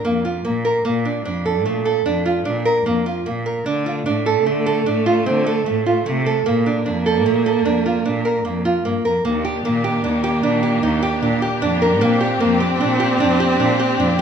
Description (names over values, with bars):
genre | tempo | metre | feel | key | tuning
contemporary instrumental, chamber music in an uneven meter | 150 BPM | 7/4 | straight | Bb major | A4 = 440 Hz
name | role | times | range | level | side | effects
nylon-string guitar | arpeggios | 0.0-14.2 s | A3 to Bb4 | -19 LUFS | right 2 dB | none
rich cello | bass | 0.0-14.2 s | Eb2 to D3 | -24 LUFS | right 2 dB | none
dark viola | second line | 3.7-14.2 s | A3 to C4 | -21 LUFS | right 2 dB | none
warm symphonic string section | sustained chords | 9.3-14.2 s | Eb3 to G4 | -25 LUFS | left 3 dB | none
room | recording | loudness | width
moderate recital hall reverb, RT60 1.6 s | minimal, uncompressed stereo recording | -16 LUFS | side -7 dB against mid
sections
0.0-9.2 A section; 9.2-14.2 B section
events
none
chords
0.0 Bbmaj7; 3.7 Dm7; 6.5 Bbmaj7; 9.2 Ebmaj7; 12.0 Bb69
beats
0.05 0.45 | 0.85 1.25 1.66 2.06 2.46 2.86 3.26 | 3.66 4.06 4.46 4.86 5.26 5.66 6.06 | 6.46 6.86 7.26 7.66 8.05 8.45 8.85 | 9.25 9.64 10.04 10.44 10.83 11.23 11.62 | 12.02 12.41 12.81 13.20 13.60 13.99